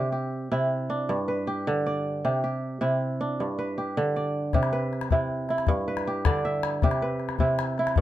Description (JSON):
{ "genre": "west african traditional, West African string and xylophone music", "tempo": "105 BPM (dotted quarters)", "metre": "12/8", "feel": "straight", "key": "C major", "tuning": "A4 = 440 Hz", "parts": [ { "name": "kora", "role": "arpeggios", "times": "0.0-8.0 s", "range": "G2 to E5", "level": "-25 LUFS", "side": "right 1 dB", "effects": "none" }, { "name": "calabash", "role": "percussion", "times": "4.5-8.0 s", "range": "none", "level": "-26 LUFS", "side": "left 4 dB", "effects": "none" } ], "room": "light reverb", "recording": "none", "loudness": "-24 LUFS", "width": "side -13 dB against mid", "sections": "0.0-4.5 A section; 4.5-8.0 A section", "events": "none", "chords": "0.0 C; 1.1 G; 2.2 C; 3.4 G; 4.5 C; 5.7 G; 6.8 C" }